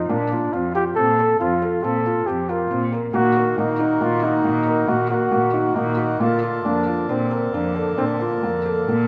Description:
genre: contemporary instrumental, chamber music in an uneven meter.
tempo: 137 BPM.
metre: 7/4.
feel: straight.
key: Bb major.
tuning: A4 = 441 Hz.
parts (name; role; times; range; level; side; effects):
breathy flugelhorn; second line; 0.0-9.1 s; Bb3 to A4; -24 LUFS; equal; none.
felt-muted upright piano; arpeggios; 0.0-9.1 s; Bb3 to Bb4; -26 LUFS; equal; none.
dark cello; bass; 0.1-9.1 s; F2 to Bb2; -29 LUFS; equal; none.
hand-pumped harmonium; sustained chords; 3.2-9.1 s; D3 to A4; -28 LUFS; equal; none.
room: moderate recital hall reverb, RT60 1.5 s.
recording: none.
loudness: -21 LUFS.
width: mono.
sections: 0.0-9.1 A section.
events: none.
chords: 0.1 Bbmaj7sus2; 3.1 Ebm/Bb; 6.2 Bbmaj7.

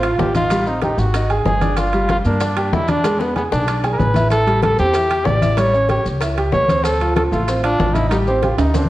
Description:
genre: Afro-Cuban jazz.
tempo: 189 BPM.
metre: 4/4.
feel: straight.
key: unclear.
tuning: A4 = 439 Hz.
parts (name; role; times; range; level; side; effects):
clear flugelhorn; melody; 0.0-8.9 s; B3 to D5; -19 LUFS; equal; none.
warm concert grand piano; accompaniment; 0.0-8.9 s; F3 to G#5; -21 LUFS; right 1 dB; none.
upright bass; bass; 0.0-8.9 s; G1 to G2; -20 LUFS; equal; none.
congas; percussion; 0.0-8.9 s; none; -24 LUFS; left 2 dB; none.
maracas; percussion; 0.0-8.9 s; none; -37 LUFS; left 3 dB; none.
timbales; percussion; 0.0-8.8 s; none; -27 LUFS; right 4 dB; none.
bongos; percussion; 0.2-8.9 s; none; -28 LUFS; left 4 dB; none.
room: wet recital hall reverb, RT60 1.3 s.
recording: worn, warbling old tape, cassette tape, warbly pitch drift.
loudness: -15 LUFS.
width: side -15 dB against mid.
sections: 0.0-8.9 A section.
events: drum fill 3.0-4.3, 8.6-8.9.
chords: 0.0 Dm (rootless); 0.5 F9; 1.1 G#5; 1.8 Gm7; 3.0 E7; 4.3 Am7; 5.6 A7; 6.8 Dm7; 8.1 Am7b5.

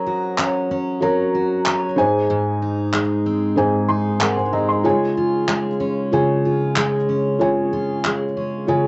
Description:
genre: acoustic pop.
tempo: 94 BPM.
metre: 4/4.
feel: straight.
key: Db major.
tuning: A4 = 438 Hz.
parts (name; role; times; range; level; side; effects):
felt-muted upright piano; accompaniment; 0.0-8.9 s; Eb4 to C6; -23 LUFS; equal; cassette tape.
picked steel-string acoustic guitar; accompaniment; 0.0-8.9 s; Ab2 to Gb4; -24 LUFS; equal; cassette tape.
group handclap; percussion; 0.4-8.2 s; none; -24 LUFS; equal; none.
room: moderate booth ambience, RT60 0.2 s.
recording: home recording on cassette, nothing above 7.9 kHz.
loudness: -20 LUFS.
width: mono.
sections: 0.0-8.9 A section.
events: felt piano fill 3.6-4.8, 8.7.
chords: 0.0 Gb; 2.0 Ab; 4.8 Db.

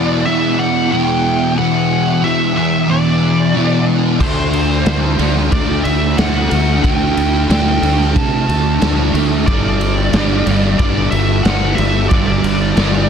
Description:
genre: rock, shoegaze and dream pop.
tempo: 91 BPM.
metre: 4/4.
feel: straight.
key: D mixolydian.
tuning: A4 = 440 Hz.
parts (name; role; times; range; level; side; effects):
nasal lead guitar with a parked wah; melody; 0.0-13.1 s; C5 to A5; -20 LUFS; right 1 dB; overdrive, tape echo.
fuzz guitar; riff; 0.0-13.1 s; E2 to D4; -15 LUFS; equal; distortion, ensemble chorus.
fuzz fingered electric bass; bass; 4.2-13.1 s; G1 to C3; -17 LUFS; equal; overdrive.
raw garage drum kit; drums; 4.2-12.9 s; crash cymbal, kick drum, ride cymbal, snare drum; -18 LUFS; equal; none.
room: studio reverb.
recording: dense, heavily limited modern master.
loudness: -12 LUFS.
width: side -7 dB against mid.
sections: 0.0-13.1 A section.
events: none.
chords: 0.0 E7(no3); 4.2 D7sus4; 9.5 G5.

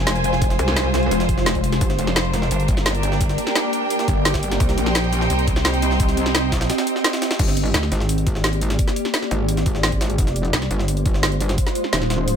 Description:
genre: dark technical drum and bass.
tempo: 172 BPM.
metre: 4/4.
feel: straight.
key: G phrygian.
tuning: A4 = 440 Hz.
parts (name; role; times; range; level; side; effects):
swarming drone; sustained chords; 0.0-12.4 s; Ab3 to Eb5; -24 LUFS; equal; built-in reverb, sidechain pumping.
pulsing pluck wobble bass; bass; 0.0-7.9, 10.5-10.7 s; F1 to D2; -22 LUFS; equal; chorus.
bright symphonic string section; texture; 0.0-7.4 s; D4 to Ab5; -26 LUFS; right 1 dB; sidechain pumping.
drum and bass drum kit; drums; 0.1-12.3 s; crash cymbal, hi-hat, snare drum; -23 LUFS; equal; overdrive.
jungle sampler-style drum kit; drums; 0.1-12.4 s; hi-hat, snare drum; -30 LUFS; equal; high-pass filter on hats, high-pass filter on snare.
electronic kick drum; drums; 0.4-11.6 s; none; -22 LUFS; equal; overdrive.
metallic wobble bass; bass; 0.6-2.0, 4.6-4.8, 7.4-12.4 s; Eb1 to C2; -21 LUFS; equal; chorus, tube saturation, sidechain pumping.
room: light reverb.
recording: none.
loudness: -17 LUFS.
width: side -8 dB against mid.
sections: 0.0-7.4 A section; 7.4-12.4 A section.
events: drop 0.0-7.4, 7.4-12.4.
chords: 0.0 Fm; 1.8 Gm; 4.6 Cm; 7.4 Gm; 10.2 Fm.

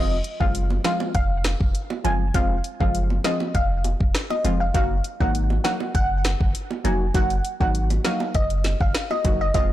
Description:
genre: dancehall.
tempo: 100 BPM.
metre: 4/4.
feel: straight.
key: unclear.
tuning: A4 = 442 Hz.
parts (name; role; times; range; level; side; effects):
glassy wavetable pluck; melody; 0.0-9.7 s; Eb5 to Ab5; -27 LUFS; equal; chorus, tape echo.
synth brass stab; accompaniment; 0.0-9.7 s; F3 to Gb4; -28 LUFS; left 1 dB; chorus.
punchy sub bass; bass; 0.0-9.7 s; F1 to Ab1; -24 LUFS; equal; none.
afro-pop drum kit; drums; 0.2-9.7 s; hi-hat, kick drum, rim click, snare drum; -24 LUFS; equal; soft clipping on snare.
bongos; percussion; 0.7-9.4 s; none; -32 LUFS; right 7 dB; none.
room: little or no reverb.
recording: blown-out, overdriven recording, overdrive.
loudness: -20 LUFS.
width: side -14 dB against mid.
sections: 0.0-9.7 A section.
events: none.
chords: 0.0 Fm; 4.7 Ebm.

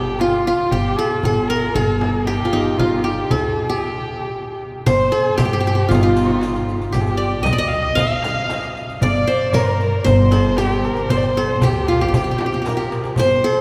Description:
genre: Arabic maqam ensemble.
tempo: 116 BPM.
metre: 4/4.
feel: straight.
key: G maqam bayati.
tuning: A4 = 440 Hz.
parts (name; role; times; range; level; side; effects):
qanun; melody; 0.0-13.6 s; Eb4 to F5; -22 LUFS; equal; none.
dark violin; second line; 0.0-13.6 s; F4 to F5; -27 LUFS; equal; none.
upright bass; bass; 0.0-13.4 s; G1 to G2; -24 LUFS; equal; none.
darbuka; percussion; 0.1-13.3 s; none; -27 LUFS; equal; none.
frame drum; percussion; 0.2-13.3 s; none; -30 LUFS; equal; none.
riq; percussion; 4.9-13.4 s; none; -37 LUFS; equal; none.
room: wet cathedral reverb, RT60 5.1 s.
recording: recorded in a church or concert hall.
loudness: -18 LUFS.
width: mono.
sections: 0.0-4.9 A section; 4.9-13.6 B section.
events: break 3.8-4.9; drum fill 12.7-13.2.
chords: none.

